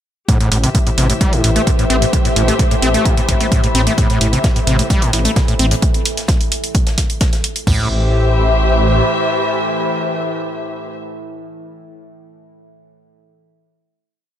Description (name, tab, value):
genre	driving peak-time techno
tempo	130 BPM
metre	4/4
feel	straight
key	A minor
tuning	A4 = 437 Hz
part	screaming distorted acid line	riff	0.3-7.9 s	A2 to C4	-19 LUFS	equal	distortion, chorus, cassette tape, sidechain pumping, dub echo
part	overtone-sweeping drone	drone	0.9-10.8 s	A2 to E3	-23 LUFS	equal	chorus, built-in reverb, sidechain pumping
part	electronic hi-hat	drums	0.3-7.6 s	none	-21 LUFS	right 1 dB	none
part	punchy analog drum machine	drums	0.3-7.8 s	crash cymbal, kick drum, toms	-16 LUFS	equal	none
part	dark chamber string section	texture	0.3-11.0 s	G4 to E5	-21 LUFS	left 3 dB	sidechain pumping
part	detuned saw bass	bass	0.5-9.0 s	A1	-16 LUFS	equal	sidechain pumping
part	modern studio drum kit	drums	4.0-7.6 s	hi-hat, shaker, snare drum	-30 LUFS	left 2 dB	sidechain pumping on hats, high-pass filter on hats, high-pass filter on snare, sidechain pumping on perc, high-pass filter on perc, high-pass filter on room
room	light reverb, small room ambience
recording	none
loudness	-13 LUFS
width	side -10 dB against mid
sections	0.3-7.7 groove; 7.7-11.4 final chord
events	filter sweep on acid bass 0.3-5.8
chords	0.3 Am